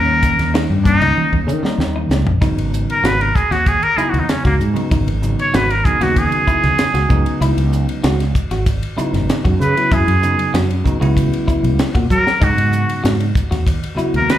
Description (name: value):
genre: electric jazz fusion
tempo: 96 BPM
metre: 4/4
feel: straight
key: unclear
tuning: A4 = 440 Hz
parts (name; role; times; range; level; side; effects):
- trumpet with straight mute; melody; 0.0-14.4 s; A#3 to C#5; -17 LUFS; equal; slapback echo
- bell-like tine electric piano; accompaniment; 0.0-14.4 s; C#3 to F#4; -22 LUFS; right 2 dB; fast stereo tremolo, slapback echo
- clean electric guitar; stabs; 0.0-14.1 s; C#4 to F#4; -26 LUFS; left 2 dB; lush chorus, slapback echo
- fretless electric bass; bass; 0.0-14.3 s; G#1 to F#3; -17 LUFS; equal; none
- tight funk drum kit; drums; 0.2-14.4 s; hi-hat, kick drum, ride cymbal, snare drum, toms; -20 LUFS; equal; none
room: studio ambience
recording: live gig heard through the venue's PA, club reverb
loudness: -14 LUFS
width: side -12 dB against mid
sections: 0.0-2.4 A section; 2.4-14.4 B section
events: drum fill 1.2-2.4, 12.1-12.4; muted trumpet solo 2.4-14.4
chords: 0.0 D#7; 2.4 C#9sus4; 9.9 F#7sus4; 12.4 G#m7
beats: 0.54 1.16 1.79 | 2.41 3.04 3.66 4.29 | 4.91 5.54 6.17 6.79 | 7.42 8.04 8.67 9.29 | 9.92 10.54 11.17 11.79 | 12.41 13.04 13.66 14.28